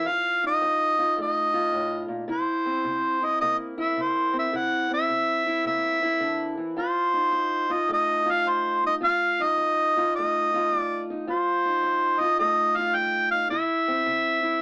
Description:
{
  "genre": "acoustic country blues, solo or duo",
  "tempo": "107 BPM",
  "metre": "4/4",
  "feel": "swing 66% on 8ths",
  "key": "unclear",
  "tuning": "A4 = 440 Hz",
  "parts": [
    { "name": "clear harmonica", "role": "melody", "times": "0.0-14.6 s", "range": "C5 to G5", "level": "-22 LUFS", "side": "equal", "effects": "none" },
    { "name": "fingerpicked steel-string acoustic guitar", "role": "accompaniment", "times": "0.0-14.6 s", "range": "F2 to F4", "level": "-29 LUFS", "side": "equal", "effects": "none" }
  ],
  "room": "moderate small room reverb, RT60 0.5 s",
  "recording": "AM radio sound",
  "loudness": "-21 LUFS",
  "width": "side -29 dB against mid",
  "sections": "0.0-14.6 A section",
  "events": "none",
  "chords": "0.1 F7; 2.3 C7; 6.8 F7; 13.5 C"
}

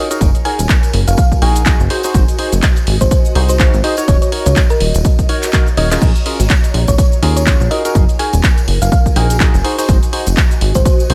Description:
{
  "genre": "piano house",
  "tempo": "124 BPM",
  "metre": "4/4",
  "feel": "swing 58% on 16ths",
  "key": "unclear",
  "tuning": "A4 = 442 Hz",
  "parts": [
    { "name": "thumb-piano-like synth pluck", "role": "melody", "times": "0.0-10.9 s", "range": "Bb4 to Ab5", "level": "-23 LUFS", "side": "equal", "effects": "chorus, cassette tape, digital delay" },
    { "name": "percussive organ stab", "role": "riff", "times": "0.0-11.1 s", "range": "Db4 to F5", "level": "-24 LUFS", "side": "equal", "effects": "subtle chorus, sidechain pumping, digital delay" },
    { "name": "ethereal airy pad", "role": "texture", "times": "0.1-11.1 s", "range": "F4 to Bb5", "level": "-29 LUFS", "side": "equal", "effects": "ensemble chorus, built-in reverb, phaser, sidechain pumping" },
    { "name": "punchy analog drum machine", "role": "drums", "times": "0.1-11.1 s", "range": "cabasa, crash cymbal, handclaps, hi-hat", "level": "-23 LUFS", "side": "equal", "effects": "none" },
    { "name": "tambourine", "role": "percussion", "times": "0.1-11.1 s", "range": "none", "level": "-34 LUFS", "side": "equal", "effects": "none" },
    { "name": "plucky analog bass", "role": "bass", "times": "0.2-11.1 s", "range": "Eb1 to Eb2", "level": "-16 LUFS", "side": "equal", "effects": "sidechain pumping" },
    { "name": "electronic kick drum", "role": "drums", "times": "0.2-11.0 s", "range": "none", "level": "-15 LUFS", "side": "equal", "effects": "none" }
  ],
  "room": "little or no reverb",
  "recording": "none",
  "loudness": "-13 LUFS",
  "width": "mono",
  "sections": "0.0-11.1 A section",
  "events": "drum fill 5.5-6.0",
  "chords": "0.0 Gb69; 1.9 Ab7; 4.1 Ebm7; 6.0 Bbm7; 7.7 Gb69; 9.6 Ab7"
}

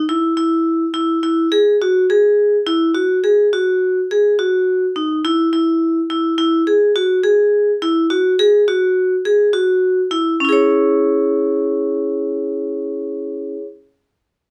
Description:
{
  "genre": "progressive instrumental, progressive",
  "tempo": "210 BPM (eighths)",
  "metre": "9/8",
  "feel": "straight",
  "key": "C# minor",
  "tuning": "A4 = 440 Hz",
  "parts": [
    { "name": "vibraphone with hard mallets", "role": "solo", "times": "0.0-13.7 s", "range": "C#4 to C#5", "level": "-16 LUFS", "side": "equal", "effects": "none" }
  ],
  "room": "moderate small room reverb, RT60 0.5 s",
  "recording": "none",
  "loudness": "-16 LUFS",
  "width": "mono",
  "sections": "0.0-10.4 A section; 10.4-13.0 B section",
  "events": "none",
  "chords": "0.1 Eadd9; 3.8 G#5; 5.2 Eadd9; 10.4 C#m"
}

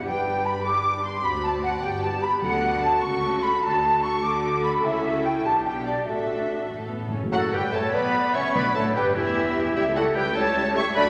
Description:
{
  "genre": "quick classical-period movement for symphony orchestra",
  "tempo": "100 BPM (dotted quarters)",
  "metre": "6/8",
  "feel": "rubato",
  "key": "D major",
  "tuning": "A4 = 440 Hz",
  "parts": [
    { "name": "warm studio violin section", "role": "melody", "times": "0.0-11.1 s", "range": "F#4 to C#6", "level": "-33 LUFS", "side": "equal", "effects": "none" },
    { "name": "flute section", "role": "second line", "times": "0.0-11.0 s", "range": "G4 to D6", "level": "-27 LUFS", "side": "equal", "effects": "none" },
    { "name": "rich studio viola section", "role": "accompaniment", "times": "0.0-11.1 s", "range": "E3 to A4", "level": "-33 LUFS", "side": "equal", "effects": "none" },
    { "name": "dark French horn section", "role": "sustained chords", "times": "0.0-11.1 s", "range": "E3 to B4", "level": "-35 LUFS", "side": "equal", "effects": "none" },
    { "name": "rich studio cello section", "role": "bass", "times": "0.0-11.1 s", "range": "C#2 to D3", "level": "-37 LUFS", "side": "equal", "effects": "none" },
    { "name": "rich studio double bass section", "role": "bass", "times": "0.0-11.1 s", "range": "E1 to D2", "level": "-39 LUFS", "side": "equal", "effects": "none" },
    { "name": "warm studio violin section", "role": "second line", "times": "0.1-11.1 s", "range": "G4 to D6", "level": "-37 LUFS", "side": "equal", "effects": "none" },
    { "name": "timpani", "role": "percussion", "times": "2.4-3.0, 6.7-9.1 s", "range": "A2 to D3", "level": "-36 LUFS", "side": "equal", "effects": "none" },
    { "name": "clear oboe", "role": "second line", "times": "7.3-11.0 s", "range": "E4 to C#5", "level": "-33 LUFS", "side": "equal", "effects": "none" },
    { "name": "warm clarinet", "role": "second line", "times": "7.3-11.1 s", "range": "D4 to C#5", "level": "-33 LUFS", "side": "equal", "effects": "none" },
    { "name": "warm bassoon", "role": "accompaniment", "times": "7.3-11.1 s", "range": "E3 to C#4", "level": "-34 LUFS", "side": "equal", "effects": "none" }
  ],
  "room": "wet scoring stage reverb, RT60 1.9 s",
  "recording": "none",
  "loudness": "-24 LUFS",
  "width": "mono",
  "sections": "0.0-7.3 A section; 7.3-11.1 B section",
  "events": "timpani fill 6.7-7.3",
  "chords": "0.1 G; 1.2 D7; 1.8 G; 2.4 D; 3.0 A/C#; 3.6 D; 4.8 A/C#; 5.4 G/B; 6.1 Asus4; 6.7 A; 7.3 D; 8.5 Em; 9.8 A7/C#"
}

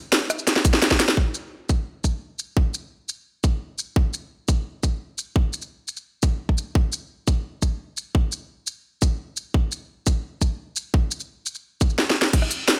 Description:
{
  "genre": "drum and bass",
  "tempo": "172 BPM",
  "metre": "4/4",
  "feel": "straight",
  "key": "none",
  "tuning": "none",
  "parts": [
    { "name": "drum and bass drum kit", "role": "drums", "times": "0.1-12.8 s", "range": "crash cymbal, hi-hat, rim click, shaker, snare drum", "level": "-23 LUFS", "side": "equal", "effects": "studio reverb" },
    { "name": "electronic kick drum", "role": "drums", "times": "0.6-12.4 s", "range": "none", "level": "-22 LUFS", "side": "equal", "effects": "studio reverb" }
  ],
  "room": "little or no reverb",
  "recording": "none",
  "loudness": "-24 LUFS",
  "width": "mono",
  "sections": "0.0-1.2 A section; 1.2-12.3 B section",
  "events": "drop 0.0-1.2; drum fill 0.5-1.2, 12.0-12.3",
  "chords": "none"
}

